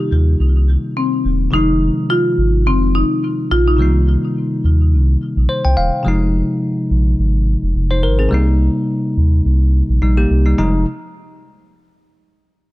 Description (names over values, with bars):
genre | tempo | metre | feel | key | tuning
afrobeats | 106 BPM | 4/4 | swing 55% on 16ths | F minor | A4 = 444 Hz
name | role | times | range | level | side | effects
marimba with medium mallets | melody | 0.0-5.5 s | C4 to G4 | -18 LUFS | left 1 dB | ping-pong delay
bell-like tine electric piano | accompaniment | 0.0-10.8 s | C3 to G5 | -19 LUFS | left 1 dB | none
warm sub bass | bass | 0.1-10.8 s | Eb1 to Eb2 | -14 LUFS | equal | none
room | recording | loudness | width
little or no reverb | none | -13 LUFS | side -17 dB against mid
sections
0.0-6.1 A section; 6.1-10.6 B section; 10.6-12.7 C section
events
tine electric piano fill 5.2-6.1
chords
0.0 Cm7; 1.5 Fm7; 3.8 Cm7; 6.1 Fm7; 8.3 Cm7; 10.6 Fm7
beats
0.40 0.96 | 1.53 2.09 2.66 3.23 | 3.79 4.36 4.92 5.49 | 6.05 6.62 7.19 7.75 | 8.32 8.88 9.45 10.02 | 10.58